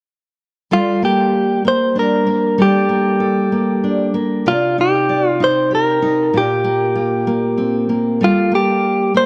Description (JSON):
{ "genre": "pop", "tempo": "64 BPM (dotted quarters)", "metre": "6/8", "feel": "straight", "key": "G minor", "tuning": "A4 = 440 Hz", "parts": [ { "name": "direct-recorded clean electric guitar", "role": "melody", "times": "0.7-9.3 s", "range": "F4 to C5", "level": "-18 LUFS", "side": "equal", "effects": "tape echo" }, { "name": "fingerpicked steel-string acoustic guitar", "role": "accompaniment", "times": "0.7-9.3 s", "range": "Bb2 to D5", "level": "-19 LUFS", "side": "equal", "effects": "none" } ], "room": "studio reverb", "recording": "dry, close 1970s-style studio recording", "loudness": "-16 LUFS", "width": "mono", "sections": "0.7-9.3 A section", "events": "none", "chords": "0.7 Gmadd9; 4.5 Cmadd9; 6.3 Bbsus2; 8.2 Gmadd9", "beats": "| 0.71 1.65 | 2.59 3.53 | 4.46 5.40 | 6.34 7.28 | 8.22 9.15" }